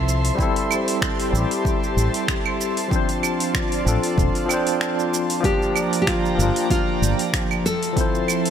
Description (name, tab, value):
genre	sunset chillout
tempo	95 BPM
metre	4/4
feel	swing 55% on 16ths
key	G dorian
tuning	A4 = 440 Hz
part	barky tine electric piano	accompaniment	0.0-8.5 s	F3 to C5	-24 LUFS	moving between left 5 dB and right 4 dB	medium stereo tremolo, auto-pan, ping-pong delay
part	airy breathy pad	sustained chords	0.0-8.5 s	F3 to C6	-26 LUFS	equal	chorus
part	mellow fretless electric bass	bass	0.0-7.1 s	E1 to C2	-20 LUFS	equal	none
part	wind-like tuned noise texture	texture	0.0-5.5 s	C5 to C6	-34 LUFS	left 1 dB	built-in reverb
part	deep house drum kit	drums	0.1-8.5 s	claves, finger snaps, hi-hat, shaker	-27 LUFS	right 3 dB	overdrive
part	electronic kick drum	drums	0.4-8.1 s	none	-24 LUFS	equal	overdrive
part	nylon-string guitar	melody	5.4-8.5 s	F4 to A4	-24 LUFS	equal	tape echo
room	light reverb, digital ambience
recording	none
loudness	-19 LUFS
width	side -8 dB against mid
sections	0.0-5.4 A section; 5.4-8.5 B section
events	none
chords	0.4 Am7; 2.9 Dm7; 5.4 Gm7; 7.7 Fmaj7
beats	| 0.39 1.02 1.65 2.29 | 2.92 3.55 4.18 4.81 | 5.44 6.07 6.71 7.34 | 7.97